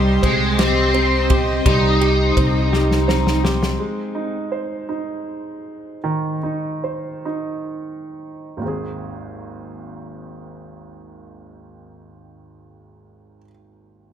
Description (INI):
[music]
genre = six-eight pop ballad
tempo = 41-56 BPM (dotted quarters)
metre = 6/8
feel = straight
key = Ab major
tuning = A4 = 439 Hz
[part]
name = overdriven slide guitar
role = melody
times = 0.0-3.4 s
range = G3 to Eb4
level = -20 LUFS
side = right 1 dB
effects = ensemble chorus, digital delay
[part]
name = clear concert grand piano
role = accompaniment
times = 0.0-14.1 s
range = Ab1 to C5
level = -25 LUFS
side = right 2 dB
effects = none
[part]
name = chorused pulse-width pad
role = sustained chords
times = 0.0-3.8 s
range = G4 to C6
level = -25 LUFS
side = left 1 dB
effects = none
[part]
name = twelve-string electric guitar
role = arpeggios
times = 0.0-4.4 s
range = G3 to Eb4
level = -28 LUFS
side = left 6 dB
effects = wide subtle chorus, digital delay
[part]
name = upright bass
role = bass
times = 0.0-3.8 s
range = C2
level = -20 LUFS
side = equal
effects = none
[part]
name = natural country drum kit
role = drums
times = 0.2-3.8 s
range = kick drum, ride cymbal, snare drum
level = -22 LUFS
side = left 1 dB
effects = none
[sound]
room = moderate plate reverb, RT60 1.6 s, studio ambience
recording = bright 1980s-style digital production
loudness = -17 LUFS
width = side -9 dB against mid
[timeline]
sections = 0.0-3.8 A section; 3.8-8.6 B section; 8.6-14.1 C section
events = drum fill 2.7-3.8; slowing down 3.8-8.6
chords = 0.0 Cm; 3.8 Ab